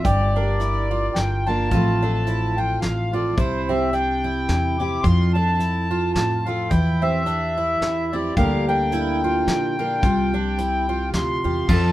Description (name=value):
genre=acoustic folk duo or small band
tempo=108 BPM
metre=3/4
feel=swing 56% on 8ths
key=F major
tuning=A4 = 441 Hz
part: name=accordion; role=melody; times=0.0-11.9 s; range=C5 to D6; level=-24 LUFS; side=left 1 dB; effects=none
part: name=fingerpicked steel-string acoustic guitar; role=accompaniment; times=0.0-11.9 s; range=F2 to Bb4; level=-25 LUFS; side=left 1 dB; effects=none
part: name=fingerpicked twelve-string acoustic guitar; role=arpeggios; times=0.0-11.9 s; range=C4 to G4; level=-27 LUFS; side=right 4 dB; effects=none
part: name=upright bass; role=bass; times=0.0-11.9 s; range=G1 to Bb2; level=-24 LUFS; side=equal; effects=none
part: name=soft brush drum kit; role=drums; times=0.0-11.8 s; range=crash cymbal, hi-hat, kick drum, snare drum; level=-24 LUFS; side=equal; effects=none
room=light reverb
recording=minimal, uncompressed stereo recording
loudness=-19 LUFS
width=side -15 dB against mid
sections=0.0-11.7 A section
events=none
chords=0.1 Gm; 1.7 F/A; 3.4 C; 5.0 F; 6.7 C/E; 8.4 Gm/D; 10.0 Csus4; 11.1 C